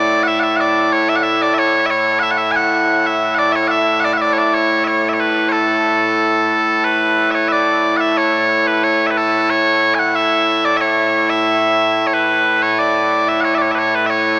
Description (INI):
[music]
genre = scottish traditional, Scottish pipe music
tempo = 91 BPM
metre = 2/4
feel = straight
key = A major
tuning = A4 = 439 Hz
[part]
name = loud bright bagpipes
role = solo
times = 0.0-14.4 s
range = A2 to G#5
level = -16 LUFS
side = equal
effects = tape echo
[sound]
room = wet huge ambient reverb, RT60 7.4 s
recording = heard from further back in the room, small speaker sound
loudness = -15 LUFS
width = mono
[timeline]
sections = 0.0-6.9 A section; 6.9-14.4 B section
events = none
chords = none